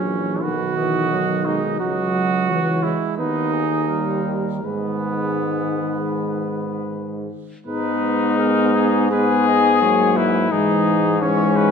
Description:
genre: classical, brass quintet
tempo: 78-88 BPM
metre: 4/4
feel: rubato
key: G# minor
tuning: A4 = 439 Hz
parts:
  - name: mellow trumpet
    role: melody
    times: 0.0-11.7 s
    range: C#4 to D#5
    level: -23 LUFS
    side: left 8 dB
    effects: none
  - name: warm trumpet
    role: second line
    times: 0.0-11.7 s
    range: B3 to D#5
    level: -25 LUFS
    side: right 7 dB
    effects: none
  - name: clear trombone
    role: accompaniment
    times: 0.0-11.7 s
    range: D#3 to B3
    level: -26 LUFS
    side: right 5 dB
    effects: none
  - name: dark French horn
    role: accompaniment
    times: 0.0-11.7 s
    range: D#3 to B3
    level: -24 LUFS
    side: left 2 dB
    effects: none
  - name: bright bass trombone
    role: bass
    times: 0.0-11.7 s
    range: A#1 to G#2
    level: -25 LUFS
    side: right 1 dB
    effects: none
room: wet scoring stage reverb, RT60 1.5 s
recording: dark, warm production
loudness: -17 LUFS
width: side -6 dB against mid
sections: 0.0-7.7 A section; 7.7-11.7 A section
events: none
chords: 0.4 B; 1.8 C#m; 3.2 G#m/D#; 3.9 D#; 4.6 G#m; 10.5 C#m/G#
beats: 0.43 1.13 | 1.82 2.50 3.19 3.90 | 4.65 5.41 6.17 6.92 | 7.67 8.38 9.12 9.83 | 10.52 11.21

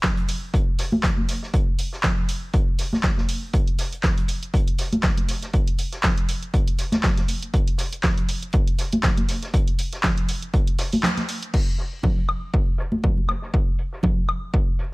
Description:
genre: house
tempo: 120 BPM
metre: 4/4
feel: swing 56% on 16ths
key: none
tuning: none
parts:
  - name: electronic kick drum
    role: drums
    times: 0.0-14.6 s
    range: none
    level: -21 LUFS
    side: equal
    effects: none
  - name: punchy analog drum machine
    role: drums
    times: 0.0-14.4 s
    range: crash cymbal, handclaps, hi-hat, woodblock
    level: -28 LUFS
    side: equal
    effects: none
  - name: warm soul drum kit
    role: drums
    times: 0.0-14.9 s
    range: hi-hat, snare drum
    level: -36 LUFS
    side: equal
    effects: sidechain pumping on hats, high-pass filter on hats, low-pass filter on hats, high-pass filter on snare, low-pass filter on snare, high-pass filter on room, low-pass filter on room
  - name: congas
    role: percussion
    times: 0.0-14.1 s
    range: none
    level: -26 LUFS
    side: right 1 dB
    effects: none
room: small room ambience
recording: vinyl crackle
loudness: -20 LUFS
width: side -24 dB against mid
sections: 0.0-11.5 A section; 11.5-14.9 B section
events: break 11.0-11.5; band accent 11.0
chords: none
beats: 0.04 0.54 1.04 | 1.54 2.04 2.54 3.04 | 3.54 4.04 4.54 5.04 | 5.54 6.04 6.54 7.04 | 7.54 8.04 8.54 9.04 | 9.54 10.04 10.54 11.04 | 11.54 12.04 12.54 13.04 | 13.54 14.04 14.54

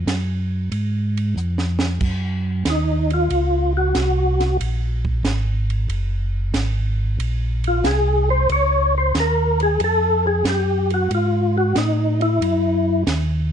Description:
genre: soul jazz organ trio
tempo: 92 BPM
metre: 4/4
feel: swing 69% on 8ths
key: Bb minor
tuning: A4 = 440 Hz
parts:
  - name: mellow tonewheel organ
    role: bass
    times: 0.0-13.5 s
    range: Gb1 to A2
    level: -20 LUFS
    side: equal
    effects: slow rotary speaker
  - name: compact cocktail drum kit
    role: drums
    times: 0.1-13.3 s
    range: crash cymbal, hi-hat, kick drum, ride cymbal, snare drum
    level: -28 LUFS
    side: right 3 dB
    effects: none
  - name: percussive tonewheel organ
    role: melody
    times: 2.7-13.0 s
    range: Eb4 to Db5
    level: -19 LUFS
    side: left 1 dB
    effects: chorus vibrato, fast rotary speaker, plate reverb
room: light reverb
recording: dark, warm production, nothing above 10.5 kHz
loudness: -18 LUFS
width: side -8 dB against mid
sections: 0.0-13.5 A section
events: tonewheel organ solo 0.0-13.5; drum fill 1.4-2.0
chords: 0.0 Bb7(no3) (rootless); 2.0 Ebm7; 7.2 Bbm; 9.8 F; 12.4 Ebm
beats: 0.07 0.72 1.37 | 2.01 2.66 3.31 3.96 | 4.60 5.25 5.90 6.55 | 7.20 7.85 8.50 9.15 | 9.80 10.46 11.11 11.76 | 12.42 13.07

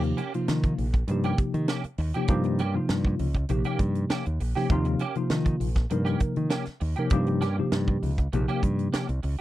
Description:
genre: electric jazz fusion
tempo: 100 BPM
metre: 4/4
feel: straight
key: Eb mixolydian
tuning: A4 = 440 Hz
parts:
  - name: tine electric piano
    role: accompaniment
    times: 0.0-9.1 s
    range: C3 to Bb4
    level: -27 LUFS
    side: left 2 dB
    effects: medium stereo tremolo, analog chorus
  - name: clean electric guitar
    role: stabs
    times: 0.0-9.4 s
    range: Bb3 to G4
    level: -33 LUFS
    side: right 6 dB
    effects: ensemble chorus
  - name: modern bright fingered electric bass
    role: bass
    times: 0.0-9.4 s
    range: Bb1 to Eb3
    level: -27 LUFS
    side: equal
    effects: none
  - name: tight funk drum kit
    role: drums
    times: 0.0-9.4 s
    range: hi-hat, kick drum, snare drum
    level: -26 LUFS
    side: right 1 dB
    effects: none
room: little or no reverb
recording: dry, close 1970s-style studio recording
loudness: -24 LUFS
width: side -15 dB against mid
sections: 0.0-9.4 A section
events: none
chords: 0.0 Eb7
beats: 0.49 1.09 1.69 | 2.29 2.90 3.50 4.10 | 4.71 5.31 5.91 6.51 | 7.12 7.72 8.32 8.93

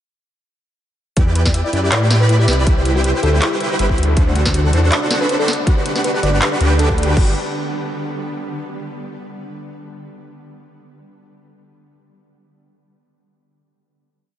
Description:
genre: future bass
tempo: 160 BPM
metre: 4/4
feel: swing 53% on 16ths, half-time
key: G major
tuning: A4 = 441 Hz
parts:
  - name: shimmering ambient pad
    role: sustained chords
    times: 2.2-7.3 s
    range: C3 to E4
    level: -28 LUFS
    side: equal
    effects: chorus, built-in reverb, sidechain pumping
  - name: soft round pluck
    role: arpeggios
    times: 1.2-7.3 s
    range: E4 to B5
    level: -28 LUFS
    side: left 2 dB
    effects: chorus, sidechain pumping, diffuse ambient delay
  - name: supersaw chords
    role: riff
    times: 1.2-7.3 s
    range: D4 to B5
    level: -22 LUFS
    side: right 1 dB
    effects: lush chorus, sidechain pumping, diffuse ambient delay
  - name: wide detuned saw bass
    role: bass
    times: 1.2-7.3 s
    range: G1 to A2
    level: -16 LUFS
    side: equal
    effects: chorus, sidechain pumping
  - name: electronic kick drum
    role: drums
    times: 1.2-7.2 s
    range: none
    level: -17 LUFS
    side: equal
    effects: none
  - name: trap drum kit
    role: drums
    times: 1.2-7.2 s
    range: crash cymbal, handclaps, hi-hat, snare drum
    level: -22 LUFS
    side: equal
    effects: none
  - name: bell-like FM electric piano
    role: melody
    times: 1.9-7.1 s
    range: G4 to D5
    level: -25 LUFS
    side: equal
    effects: chorus, cassette tape, sidechain pumping, diffuse ambient delay
room: moderate cathedral reverb, RT60 5.4 s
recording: dreamy mix soaked in reverb, nothing above 10.3 kHz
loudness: -14 LUFS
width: side -11 dB against mid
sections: 1.2-7.2 drop; 7.2-8.7 final chord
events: drop 1.2-7.2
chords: 1.2 Em7; 2.7 Cmaj7; 4.0 D7; 5.5 Gmaj7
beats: | 1.17 1.54 1.92 2.29 | 2.67 3.04 3.42 3.79 | 4.17 4.54 4.92 5.29 | 5.67 6.04 6.42 6.79 | 7.17

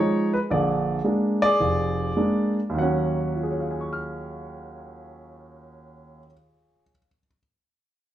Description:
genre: solo jazz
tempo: 100-114 BPM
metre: 4/4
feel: swing 69% on 8ths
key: Eb minor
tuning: A4 = 440 Hz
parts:
  - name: warm grand piano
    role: solo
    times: 0.0-7.4 s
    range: F1 to F6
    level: -22 LUFS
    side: right 1 dB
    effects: none
room: moderate large studio reverb, RT60 0.8 s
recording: band playing live in one room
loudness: -21 LUFS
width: side -12 dB against mid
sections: 0.0-2.8 A section; 2.8-7.5 B section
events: slowing down 0.0-2.8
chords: 0.0 Fm7; 0.5 Bb7; 2.8 Ebm7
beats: | 0.50 1.04 1.60 2.17 | 2.76 3.35 3.95 4.55 | 5.15 5.75 6.35 6.95

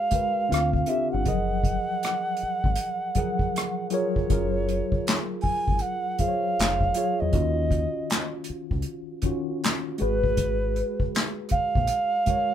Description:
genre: R&B, neo-soul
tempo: 79 BPM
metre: 4/4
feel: swing 62% on 16ths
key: F# major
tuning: A4 = 440 Hz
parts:
  - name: alto ocarina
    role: melody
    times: 0.0-12.5 s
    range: B4 to G#5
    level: -26 LUFS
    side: right 2 dB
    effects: none
  - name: mellow tine electric piano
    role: accompaniment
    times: 0.0-12.5 s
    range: D3 to F#5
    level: -29 LUFS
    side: left 1 dB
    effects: medium stereo tremolo
  - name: unplugged drum kit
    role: drums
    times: 0.1-12.5 s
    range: handclaps, hi-hat, kick drum, rim click, snare drum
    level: -26 LUFS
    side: equal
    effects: none
  - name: deep dub fingered electric bass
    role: bass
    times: 0.5-11.9 s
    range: E#1 to E2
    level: -28 LUFS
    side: left 1 dB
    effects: none
room: light reverb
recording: band playing live in one room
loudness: -23 LUFS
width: side -10 dB against mid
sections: 0.0-4.3 A section; 4.3-12.5 A section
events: none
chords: 0.5 Dm7; 1.3 F#maj13; 4.3 F#maj9; 7.3 D#m9; 10.0 G#m9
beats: 0.50 | 1.26 2.02 2.78 3.54 | 4.30 5.06 5.82 6.58 | 7.33 8.09 8.85 9.61 | 10.37 11.13 11.89

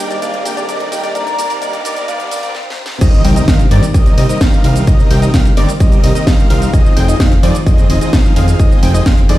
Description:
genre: EDM, festival progressive house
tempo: 129 BPM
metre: 4/4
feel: straight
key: C minor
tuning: A4 = 440 Hz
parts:
  - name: mellow hollow concert flute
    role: melody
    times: 0.0-2.5 s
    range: Eb5 to Bb5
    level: -23 LUFS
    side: equal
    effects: digital delay
  - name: lush unison pad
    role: sustained chords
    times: 0.0-9.4 s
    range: Eb3 to Bb4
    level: -24 LUFS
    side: left 1 dB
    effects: chorus, sidechain pumping
  - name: wide unison lead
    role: arpeggios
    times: 0.0-9.4 s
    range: D5 to G5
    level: -23 LUFS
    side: equal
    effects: sidechain pumping, digital delay
  - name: big supersaw lead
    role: riff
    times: 0.0-9.4 s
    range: F3 to G5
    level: -20 LUFS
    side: equal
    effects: sidechain pumping, digital delay
  - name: house drum kit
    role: drums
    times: 0.0-9.4 s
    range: crash cymbal, hi-hat, shaker, snare drum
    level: -21 LUFS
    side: equal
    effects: none
  - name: riser and impact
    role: sound effects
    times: 0.0-4.9 s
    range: none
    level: -22 LUFS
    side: equal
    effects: none
  - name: fat analog bass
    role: bass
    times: 3.0-9.4 s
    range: F1 to F2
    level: -14 LUFS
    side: equal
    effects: sidechain pumping
  - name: electronic kick drum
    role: drums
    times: 3.0-9.2 s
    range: none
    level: -10 LUFS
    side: equal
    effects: none
room: light reverb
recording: played on a big sound system in a bare room, stone room reverb, high-pass filter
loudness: -10 LUFS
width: side -15 dB against mid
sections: 0.0-3.0 A section; 3.0-9.4 B section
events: build-up 0.0-3.0; riser 0.0-2.5; break 2.5-3.0; drum fill 2.5-3.0; drop 3.0-9.4; impact 3.0-4.9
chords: 0.0 Abadd9; 3.0 Cm7; 6.7 Fm7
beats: 0.22 0.69 | 1.15 1.62 2.08 2.55 | 3.01 3.48 3.94 4.41 | 4.87 5.34 5.80 6.27 | 6.74 7.20 7.67 8.13 | 8.60 9.06

